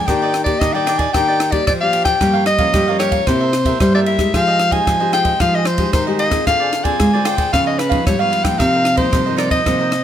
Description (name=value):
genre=samba and choro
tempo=113 BPM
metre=4/4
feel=straight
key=C minor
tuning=A4 = 438 Hz
part: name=clear soprano saxophone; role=melody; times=0.0-10.0 s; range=Cb5 to Ab5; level=-17 LUFS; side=left 2 dB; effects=none
part: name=cavaquinho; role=accompaniment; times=0.0-10.0 s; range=D4 to F5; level=-24 LUFS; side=right 7 dB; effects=none
part: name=nylon-string guitar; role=accompaniment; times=0.0-10.0 s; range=G2 to Ab4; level=-23 LUFS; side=left 3 dB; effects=none
part: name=nylon-string guitar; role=bass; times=0.1-10.0 s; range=C3 to Ab3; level=-20 LUFS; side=right 1 dB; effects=none
part: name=compact cocktail drum kit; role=drums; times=0.1-10.0 s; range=kick drum, ride cymbal, rim click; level=-21 LUFS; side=equal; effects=none
room=moderate studio reverb, RT60 0.9 s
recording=none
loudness=-13 LUFS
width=side -10 dB against mid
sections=0.0-10.0 A section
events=none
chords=0.1 Ebmaj7; 2.2 Gm7b5; 3.3 C7; 4.3 Fm9; 6.5 Dm7b5; 7.5 Db9; 8.6 Cm7